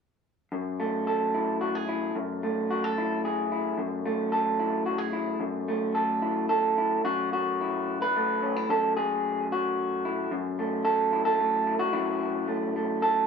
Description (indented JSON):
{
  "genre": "folk, solo fingerstyle acoustic guitar",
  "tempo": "111 BPM",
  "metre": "3/4",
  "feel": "straight",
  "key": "F# minor",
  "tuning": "A4 = 440 Hz",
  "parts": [
    { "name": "electric guitar through a small old amp", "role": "solo", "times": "0.5-13.3 s", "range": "F#2 to B4", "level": "-25 LUFS", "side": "equal", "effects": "none" }
  ],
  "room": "moderate studio ambience, RT60 0.5 s",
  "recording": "band playing live in one room",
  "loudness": "-25 LUFS",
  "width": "side -6 dB against mid",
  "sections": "0.5-7.0 A section; 7.0-13.3 B section",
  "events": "none",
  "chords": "0.5 F#m7"
}